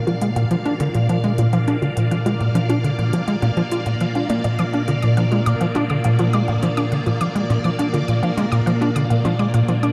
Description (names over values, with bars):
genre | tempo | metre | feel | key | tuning
ambient, sequencer-driven space music | 103 BPM | 4/4 | straight | unclear | A4 = 440 Hz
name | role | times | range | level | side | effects
phased string machine | sustained chords | 0.0-9.9 s | Bb2 to F5 | -24 LUFS | equal | ensemble chorus, phaser
unison pluck | arpeggios | 0.0-9.9 s | F4 to E6 | -31 LUFS | equal | tape echo
tight sequencer bass | riff | 0.0-9.9 s | Bb2 to F4 | -22 LUFS | equal | tape echo
electronic hi-hat and percussion blips | percussion | 0.1-9.9 s | none | -37 LUFS | equal | tape echo
room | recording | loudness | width
wet huge ambient reverb, RT60 7.9 s | dark, warm production | -19 LUFS | mono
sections
0.0-9.9 A section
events
filter sweep on synth arpeggio sound 0.0-9.9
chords
0.0 Bb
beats
0.51 1.09 1.68 | 2.26 2.84 3.42 4.01 | 4.59 5.17 5.75 6.34 | 6.92 7.50 8.08 8.67 | 9.25 9.83